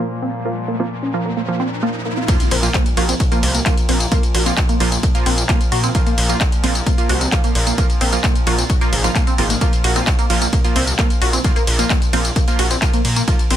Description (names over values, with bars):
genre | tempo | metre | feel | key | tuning
driving peak-time techno | 131 BPM | 4/4 | straight | unclear | A4 = 440 Hz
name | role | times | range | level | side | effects
tight sequenced synth | riff | 0.0-13.6 s | Bb3 to Gb4 | -24 LUFS | equal | chorus, tube saturation, sidechain pumping, ping-pong delay
supersaw stab | stabs | 0.0-13.3 s | F3 to F4 | -25 LUFS | right 4 dB | sidechain pumping, low-pass filter, digital delay
analog drone | drone | 0.0-13.6 s | Bb2 to F3 | -28 LUFS | left 1 dB | chorus, sidechain pumping
riser and impact | sound effects | 0.2-4.1 s | none | -28 LUFS | equal | none
electronic kick drum | drums | 2.3-13.4 s | none | -18 LUFS | equal | none
techno drum kit | drums | 2.3-13.6 s | handclaps, hi-hat, ride cymbal, tambourine | -21 LUFS | left 1 dB | none
gritty driven synth bass | bass | 2.5-13.6 s | Ab1 to Bb2 | -19 LUFS | equal | sidechain pumping
room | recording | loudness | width
little or no reverb | dense, heavily limited modern master | -14 LUFS | side -11 dB against mid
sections
0.0-2.3 A section; 2.3-13.6 B section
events
riser 0.2-2.3; drop 2.3-13.6; impact 2.3-4.1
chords
0.0 Bb5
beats
| 0.45 0.91 1.37 1.83 | 2.28 2.74 3.20 3.66 | 4.12 4.58 5.03 5.49 | 5.95 6.41 6.87 7.32 | 7.78 8.24 8.70 9.15 | 9.61 10.07 10.53 10.99 | 11.45 11.90 12.36 12.82 | 13.28